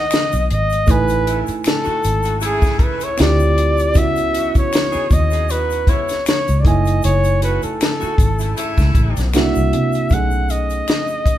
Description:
R&B, neo-soul; 78 BPM; 4/4; swing 54% on 16ths; F# dorian; A4 = 440 Hz
clear flugelhorn; melody; 0.0-11.4 s; G#4 to F#5; -20 LUFS; left 1 dB
overdriven reed electric piano; accompaniment; 0.0-11.4 s; D#3 to G#5; -24 LUFS; right 5 dB
clear saxophone section; stabs; 0.0-9.3 s; B2 to G#4; -28 LUFS; left 1 dB
compact cocktail drum kit; drums; 0.1-11.4 s; hi-hat, kick drum, snare drum; -18 LUFS; equal
finger snaps and egg shaker; percussion; 0.1-11.4 s; -34 LUFS; left 3 dB
vintage muted fingered electric bass; bass; 0.3-11.3 s; F#1 to C3; -19 LUFS; equal
moderate large studio reverb, RT60 1.3 s; band playing live in one room; -14 LUFS; side -12 dB against mid
0.0-10.1 A section; 10.1-11.4 B section
0.0 B13; 0.9 Amaj9#11/G#; 3.2 Dm9; 4.0 C#m9; 6.7 F#m9; 9.3 C9; 10.1 B9

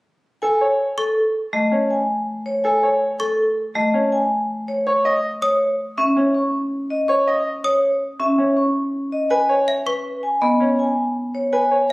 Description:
classical, minimalist pattern music; 162 BPM; 6/4; straight; A4 = 439 Hz
vibraphone with hard mallets; melody; 0.4-11.8 s; A4 to C#6; -20 LUFS; equal
bright grand piano; arpeggios; 0.4-11.9 s; C#4 to D#5; -21 LUFS; equal
trough xylophone with wooden mallets; arpeggios; 1.0-11.9 s; E5 to D#6; -25 LUFS; equal
marimba with hard mallets; accompaniment; 1.5-10.7 s; A3 to C#4; -23 LUFS; equal
moderate recital hall reverb, RT60 1.3 s; recorded on a phone in the room, club reverb; -17 LUFS; side -22 dB against mid
0.4-11.9 A section
0.4 Amaj7; 4.9 C#sus2; 9.3 C#7(no3)

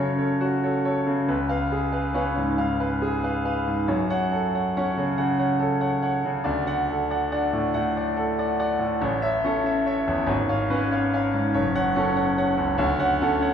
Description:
classical, romantic character piece for solo piano; 47 BPM (dotted quarters); 6/8; rubato; F# minor, A major from 9.0 s; A4 = 441 Hz
bright concert grand piano; solo; 0.0-13.5 s; F#1 to F#5; -21 LUFS; equal
wet recital hall reverb, RT60 1.6 s; recorded in a church or concert hall; -21 LUFS; side -8 dB against mid
0.0-13.5 A section
0.0 F#m; 1.3 C#7; 3.9 F#m; 6.5 D; 9.0 A; 10.3 C#7/G#; 11.5 F#m; 12.8 Dmaj7

